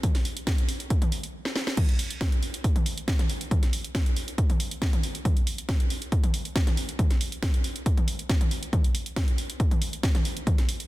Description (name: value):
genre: techno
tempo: 138 BPM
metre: 4/4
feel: straight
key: none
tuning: none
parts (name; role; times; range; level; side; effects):
- electronic kick drum; drums; 0.0-10.6 s; none; -24 LUFS; equal; none
- techno drum kit; drums; 0.0-10.9 s; crash cymbal, hi-hat, snare drum, toms; -31 LUFS; equal; none
room: little or no reverb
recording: dense, heavily limited modern master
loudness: -24 LUFS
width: side -17 dB against mid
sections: 0.0-1.8 A section; 1.8-10.9 B section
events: stop 1.3-1.8; drum fill 1.4-1.8; drop 1.8-10.9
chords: none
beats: | 0.03 0.47 0.90 1.34 | 1.77 2.21 2.64 3.08 | 3.51 3.95 4.38 4.82 | 5.25 5.69 6.12 6.56 | 6.99 7.42 7.86 8.29 | 8.73 9.16 9.60 10.03 | 10.47